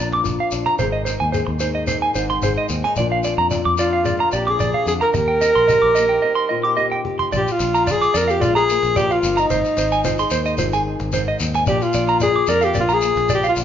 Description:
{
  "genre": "highlife guitar band",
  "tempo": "110 BPM",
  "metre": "4/4",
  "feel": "straight",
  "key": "Bb mixolydian",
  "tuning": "A4 = 439 Hz",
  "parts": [
    { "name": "nylon-string guitar", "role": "accompaniment", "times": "0.0-13.6 s", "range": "F2 to Ab4", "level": "-27 LUFS", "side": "left 6 dB", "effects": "none" },
    { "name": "semi-hollow electric guitar", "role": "arpeggios", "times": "0.0-13.5 s", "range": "C5 to D6", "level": "-20 LUFS", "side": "right 2 dB", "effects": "spring reverb" },
    { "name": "fingered electric bass", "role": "bass", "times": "0.0-13.6 s", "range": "G1 to F2", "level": "-26 LUFS", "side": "equal", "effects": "none" },
    { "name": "cajon", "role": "drums", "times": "0.1-13.4 s", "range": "none", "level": "-33 LUFS", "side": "equal", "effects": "none" },
    { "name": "shekere", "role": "percussion", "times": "0.2-13.6 s", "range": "none", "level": "-28 LUFS", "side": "left 4 dB", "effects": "none" },
    { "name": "breathy alto saxophone", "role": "melody", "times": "3.8-13.6 s", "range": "Eb4 to Bb4", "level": "-18 LUFS", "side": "equal", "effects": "none" }
  ],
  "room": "light reverb",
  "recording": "band playing live in one room, nothing above 7.5 kHz",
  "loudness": "-16 LUFS",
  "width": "side -9 dB against mid",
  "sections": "0.0-7.3 A section; 7.3-13.6 B section",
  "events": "break 6.2-7.3; drum fill 6.8-7.3",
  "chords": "0.0 Bb; 0.8 Ab; 3.0 Bb; 5.1 Eb6; 7.3 Bb; 9.5 Ab; 11.7 Bb"
}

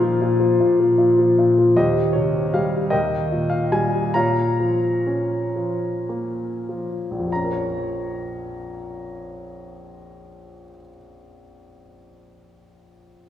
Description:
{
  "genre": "classical, lyrical solo piano",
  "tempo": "30-52 BPM (dotted quarters)",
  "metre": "6/8",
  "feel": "rubato",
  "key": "Bb dorian",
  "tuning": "A4 = 441 Hz",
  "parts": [
    { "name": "clear grand piano", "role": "solo", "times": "0.0-13.3 s", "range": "Bb1 to Bb5", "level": "-19 LUFS", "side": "left 1 dB", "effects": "none" }
  ],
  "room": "wet church reverb, RT60 2.8 s",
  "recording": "recorded in a church or concert hall",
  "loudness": "-18 LUFS",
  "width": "side -10 dB against mid",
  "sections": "0.0-1.8 A section; 1.8-7.3 B section; 7.3-11.2 C section",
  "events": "slowing down 1.8-7.3",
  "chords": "0.0 Bb5; 1.8 Cm/Eb; 2.9 Eb; 4.1 Bbm"
}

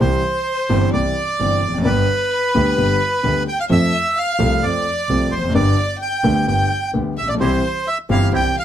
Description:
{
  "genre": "tango",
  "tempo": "130 BPM",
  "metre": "4/4",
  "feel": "rubato",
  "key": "C major",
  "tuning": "A4 = 440 Hz",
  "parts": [
    { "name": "bandoneon", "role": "melody", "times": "0.0-8.6 s", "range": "B4 to G5", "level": "-20 LUFS", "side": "right 3 dB", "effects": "none" },
    { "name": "warm violin", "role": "second line", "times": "0.0-8.6 s", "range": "B4 to G5", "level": "-27 LUFS", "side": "left 6 dB", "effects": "none" },
    { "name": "clear concert grand piano", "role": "accompaniment", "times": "0.0-8.5 s", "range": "G1 to A4", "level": "-19 LUFS", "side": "left 2 dB", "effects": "none" },
    { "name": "clear double bass", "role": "bass", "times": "0.0-8.5 s", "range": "F1 to F2", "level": "-21 LUFS", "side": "right 2 dB", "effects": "none" },
    { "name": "bandoneon", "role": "stabs", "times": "7.4-8.5 s", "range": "C4 to G4", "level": "-28 LUFS", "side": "right 5 dB", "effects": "none" }
  ],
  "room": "light reverb",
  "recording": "none",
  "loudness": "-16 LUFS",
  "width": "side -10 dB against mid",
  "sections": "0.0-8.6 A section",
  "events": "none",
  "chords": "0.0 C; 1.9 G; 3.7 F; 5.5 G; 7.4 C"
}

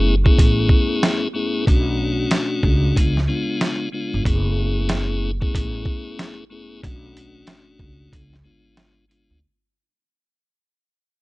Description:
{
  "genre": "hip hop, boom-bap hip-hop",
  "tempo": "93 BPM",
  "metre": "4/4",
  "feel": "swing 62% on 16ths",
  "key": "F# minor",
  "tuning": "A4 = 440 Hz",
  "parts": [
    { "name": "tonewheel organ", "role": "accompaniment", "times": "0.0-9.4 s", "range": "F#2 to G#4", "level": "-23 LUFS", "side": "left 2 dB", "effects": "high-pass filter, low-pass filter, plate reverb" },
    { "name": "upright bass", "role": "bass", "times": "0.0-9.4 s", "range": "F#1 to D2", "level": "-21 LUFS", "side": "equal", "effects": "none" },
    { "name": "boom bap sampler-style drum kit", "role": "drums", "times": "0.3-9.3 s", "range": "hi-hat, kick drum, snare drum", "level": "-18 LUFS", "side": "equal", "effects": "none" }
  ],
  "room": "little or no reverb",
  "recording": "nothing above 10.6 kHz",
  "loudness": "-17 LUFS",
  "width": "side -20 dB against mid",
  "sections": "0.0-9.4 A section",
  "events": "fade-out 0.0-9.4",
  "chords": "0.0 F#m11; 1.7 Bm9; 3.0 C#7b9; 4.3 F#m11; 6.8 Bm9; 8.1 C#7b9"
}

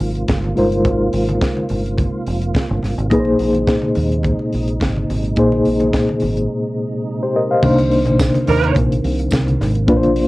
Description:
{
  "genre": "disco",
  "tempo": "106 BPM",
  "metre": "4/4",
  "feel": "straight",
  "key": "unclear",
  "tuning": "A4 = 440 Hz",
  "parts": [
    { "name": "mellow reed electric piano", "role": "accompaniment", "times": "0.0-10.3 s", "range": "Bb2 to F5", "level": "-17 LUFS", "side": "left 1 dB", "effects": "fast tremolo, cassette tape" },
    { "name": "percussive tonewheel organ", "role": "sustained chords", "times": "0.0-10.3 s", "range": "C3 to F4", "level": "-25 LUFS", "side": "right 2 dB", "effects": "chorus vibrato, slow rotary speaker, cassette tape" },
    { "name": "deep dub fingered electric bass", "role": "bass", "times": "0.0-10.2 s", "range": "F1 to Eb2", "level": "-20 LUFS", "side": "equal", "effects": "none" },
    { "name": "tight funk drum kit", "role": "drums", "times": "0.0-10.3 s", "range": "crash cymbal, hi-hat, kick drum, snare drum", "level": "-22 LUFS", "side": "equal", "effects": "cassette tape" },
    { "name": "congas", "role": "percussion", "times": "0.3-10.2 s", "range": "none", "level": "-28 LUFS", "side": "equal", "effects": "none" },
    { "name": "tambourine", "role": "percussion", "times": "8.2-9.5 s", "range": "none", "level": "-33 LUFS", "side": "right 6 dB", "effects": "none" },
    { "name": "dark horn section", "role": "stabs", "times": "8.5-8.7 s", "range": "G3 to Bb4", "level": "-17 LUFS", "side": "right 6 dB", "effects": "cassette tape" }
  ],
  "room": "light reverb",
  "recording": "home recording on cassette",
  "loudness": "-14 LUFS",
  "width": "side -19 dB against mid",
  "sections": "0.0-7.6 A section; 7.6-10.3 B section",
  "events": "break 6.5-7.6",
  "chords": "0.0 Ab69; 3.1 Bb9sus4; 7.6 Cm7"
}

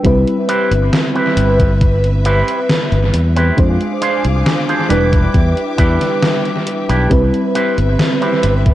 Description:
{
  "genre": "vaporwave",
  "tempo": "68 BPM",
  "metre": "4/4",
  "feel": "straight",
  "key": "C major",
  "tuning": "A4 = 440 Hz",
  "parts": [
    { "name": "mellow FM electric piano", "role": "accompaniment", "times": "0.0-8.7 s", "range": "G3 to C5", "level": "-17 LUFS", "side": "equal", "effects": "analog chorus, analog delay" },
    { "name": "modern bright fingered electric bass", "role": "bass", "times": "0.0-8.7 s", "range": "E1 to F2", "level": "-14 LUFS", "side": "equal", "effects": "none" },
    { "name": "electronic kick drum", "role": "drums", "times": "0.0-8.7 s", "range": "none", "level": "-14 LUFS", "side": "equal", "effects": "none" },
    { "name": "gated 80s digital drum machine", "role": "drums", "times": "0.0-8.7 s", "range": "hi-hat, snare drum", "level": "-19 LUFS", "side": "equal", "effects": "gated reverb, gated reverb snare, analog delay" },
    { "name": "rich studio string section", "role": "sustained chords", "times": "0.1-8.7 s", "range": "G4 to D6", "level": "-24 LUFS", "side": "left 2 dB", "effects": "none" },
    { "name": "electric guitar with an envelope filter", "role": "riff", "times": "0.5-8.7 s", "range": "C4 to C5", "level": "-21 LUFS", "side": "right 2 dB", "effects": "wide subtle chorus, vintage 12-bit sampler grit, analog delay" }
  ],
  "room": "light reverb",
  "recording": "echo-heavy mix, cassette tape",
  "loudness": "-12 LUFS",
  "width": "side -14 dB against mid",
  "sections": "0.0-8.7 A section",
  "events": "none",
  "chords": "0.0 Cmaj7; 3.6 Fm6; 4.9 Em7; 7.1 Cmaj7"
}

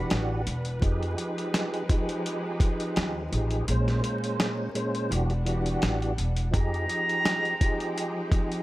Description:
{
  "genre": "hip hop, boom-bap hip-hop",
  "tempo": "84 BPM",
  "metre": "4/4",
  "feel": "swing 55% on 16ths",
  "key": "unclear",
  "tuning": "A4 = 439 Hz",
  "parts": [
    { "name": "trumpet with straight mute", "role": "melody", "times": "0.0-0.1, 6.5-8.1 s", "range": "Bb5", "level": "-29 LUFS", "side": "right 1 dB", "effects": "tape echo" },
    { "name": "tonewheel organ", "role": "accompaniment", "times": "0.0-8.6 s", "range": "Bb2 to C5", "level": "-30 LUFS", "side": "right 1 dB", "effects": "chorus vibrato, slow rotary speaker" },
    { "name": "dark studio string section", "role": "sustained chords", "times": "0.0-8.6 s", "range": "E3 to G5", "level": "-38 LUFS", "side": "left 1 dB", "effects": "none" },
    { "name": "upright bass", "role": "bass", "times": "0.1-6.8 s", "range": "E1 to F2", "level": "-28 LUFS", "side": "equal", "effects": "none" },
    { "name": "dusty soul sampler-style drum kit", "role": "drums", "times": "0.1-8.6 s", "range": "hi-hat, kick drum, snare drum", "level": "-27 LUFS", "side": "equal", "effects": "none" }
  ],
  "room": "small room ambience",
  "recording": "vinyl crackle",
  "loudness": "-25 LUFS",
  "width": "side -17 dB against mid",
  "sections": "0.0-8.6 A section",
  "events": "kick muted 3.7-6.5",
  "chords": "0.0 Em9; 0.8 Fm9; 3.7 Bbm9; 5.1 Em9; 6.5 Fm9"
}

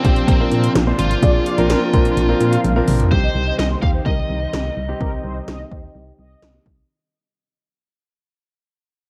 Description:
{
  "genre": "synth-pop",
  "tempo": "127 BPM",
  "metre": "4/4",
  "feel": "straight",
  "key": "C minor",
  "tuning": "A4 = 439 Hz",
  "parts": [
    { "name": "bluesy overdriven lead guitar", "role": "melody", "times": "0.0-6.4 s", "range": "C4 to F5", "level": "-26 LUFS", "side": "equal", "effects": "distortion, low-pass filter, slapback echo" },
    { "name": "clear grand piano", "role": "accompaniment", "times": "0.0-6.9 s", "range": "C4 to C5", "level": "-26 LUFS", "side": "equal", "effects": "low-pass filter" },
    { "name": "string machine, violas", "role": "sustained chords", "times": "0.0-6.9 s", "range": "C3 to Eb4", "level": "-29 LUFS", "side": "equal", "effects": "phaser, ensemble chorus, low-pass filter" },
    { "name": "solid FM bass", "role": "bass", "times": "0.0-6.8 s", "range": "Ab1 to Bb2", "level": "-23 LUFS", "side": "equal", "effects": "none" },
    { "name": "80s electronic pad drums", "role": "drums", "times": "0.0-6.8 s", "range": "hi-hat, kick drum, snare drum, toms", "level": "-22 LUFS", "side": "equal", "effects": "gated reverb on snare and toms, overdrive" },
    { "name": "mellow synth brass", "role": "second line", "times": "0.2-6.5 s", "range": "Bb4 to F5", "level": "-30 LUFS", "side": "equal", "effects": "chorus, slapback echo" }
  ],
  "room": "light reverb",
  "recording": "dark, warm production",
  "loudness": "-17 LUFS",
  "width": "mono",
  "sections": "0.0-3.1 A section; 3.1-6.9 B section",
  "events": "drum fill 2.6-3.1; fade-out 3.1-6.9; filter sweep 3.1-6.9",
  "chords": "0.0 Bbadd9; 3.1 Cm"
}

